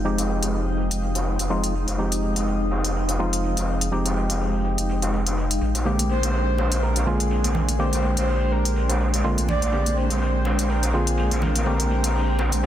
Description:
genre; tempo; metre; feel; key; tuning
deep house; 124 BPM; 4/4; swing 56% on 16ths; unclear; A4 = 440 Hz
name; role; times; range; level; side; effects
deep dark ambient pad; sustained chords; 0.0-12.7 s; Ab3 to Eb6; -33 LUFS; right 2 dB; chorus, built-in reverb
percussive organ stab; stabs; 0.0-12.7 s; D3 to G4; -27 LUFS; equal; chorus, cassette tape, tape echo
rubbery square bass; bass; 0.0-12.7 s; F1 to Bb1; -24 LUFS; equal; tube saturation
granular cloud pad; texture; 0.0-12.7 s; Ab3 to G5; -30 LUFS; equal; built-in reverb
raw garage drum kit; drums; 0.1-12.7 s; hi-hat, snare drum; -33 LUFS; equal; high-pass filter on hats, low-pass filter on hats, studio reverb, high-pass filter on snare, low-pass filter on snare, high-pass filter on room, low-pass filter on room
electronic hi-hat; drums; 0.2-12.6 s; none; -28 LUFS; left 2 dB; studio reverb
congas; percussion; 6.0-12.6 s; none; -32 LUFS; right 2 dB; none
breathy flute-like synth lead; melody; 6.1-12.7 s; Ab4 to D5; -28 LUFS; equal; wide subtle chorus, dub echo
room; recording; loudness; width
light reverb, digital ambience; dense, heavily limited modern master; -20 LUFS; side -11 dB against mid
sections
0.0-12.7 A section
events
none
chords
0.0 Fm9; 5.6 Bb13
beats
| 0.05 0.54 1.02 1.50 | 1.99 2.47 2.95 3.44 | 3.92 4.41 4.89 5.37 | 5.86 6.34 6.83 7.31 | 7.79 8.28 8.76 9.24 | 9.73 10.21 10.70 11.18 | 11.66 12.15 12.63

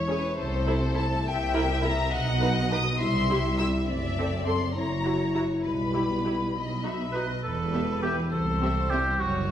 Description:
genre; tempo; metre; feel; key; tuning
cinematic, playful, whimsical film cue; 68 BPM (dotted quarters); 6/8; straight; E minor; A4 = 441 Hz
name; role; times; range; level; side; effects
rich chamber violin section; melody; 0.0-9.0 s; C5 to E6; -32 LUFS; left 3 dB; none
mellow French horn section; sustained chords; 0.0-7.1 s; F#3 to E4; -31 LUFS; left 2 dB; none
rich chamber double bass section; bass; 0.0-9.5 s; E1 to C2; -31 LUFS; right 1 dB; none
warm chamber cello section; bass; 0.0-9.5 s; C2 to C3; -31 LUFS; right 2 dB; none
rich studio violin section; second line; 0.1-9.5 s; A4 to E5; -35 LUFS; left 4 dB; none
warm chamber viola section; accompaniment; 0.1-9.0 s; B3 to B4; -33 LUFS; right 1 dB; none
warm oboe; second line; 7.1-9.5 s; F#4 to B4; -29 LUFS; equal; none
room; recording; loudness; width
wet recital hall reverb, RT60 1.6 s; recorded in a church or concert hall; -24 LUFS; side -10 dB against mid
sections
0.0-7.4 A section; 7.4-9.5 B section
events
none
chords
0.4 Am/C; 1.3 C7; 2.1 B; 3.0 C; 3.9 F#m7b5; 4.8 F#7; 5.6 Em/B; 6.5 B; 7.4 Em; 8.3 C5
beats
| 0.38 1.25 | 2.13 3.00 | 3.88 4.75 | 5.64 6.54 | 7.44 8.32 | 9.20

